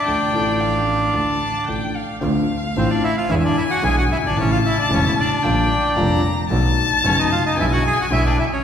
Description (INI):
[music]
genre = tango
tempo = 112 BPM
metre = 4/4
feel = rubato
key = D harmonic minor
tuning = A4 = 438 Hz
[part]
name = bandoneon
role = melody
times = 0.0-8.6 s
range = C4 to G#5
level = -21 LUFS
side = equal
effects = none
[part]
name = rich violin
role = second line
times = 0.0-8.6 s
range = F5 to Bb5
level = -23 LUFS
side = left 4 dB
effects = none
[part]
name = dark concert grand piano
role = accompaniment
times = 0.1-8.3 s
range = E1 to A4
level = -22 LUFS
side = left 2 dB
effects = none
[part]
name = bright double bass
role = bass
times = 0.1-8.3 s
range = E1 to E2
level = -23 LUFS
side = right 2 dB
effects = none
[sound]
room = wet concert hall reverb, RT60 2.5 s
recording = recorded in a church or concert hall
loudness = -16 LUFS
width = side -8 dB against mid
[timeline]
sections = 0.0-2.2 A section; 2.2-8.6 B section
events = none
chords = 0.1 Dm; 2.2 Dm7; 3.3 E7; 4.4 A; 5.4 Bb6; 6.5 B7; 7.6 E7/B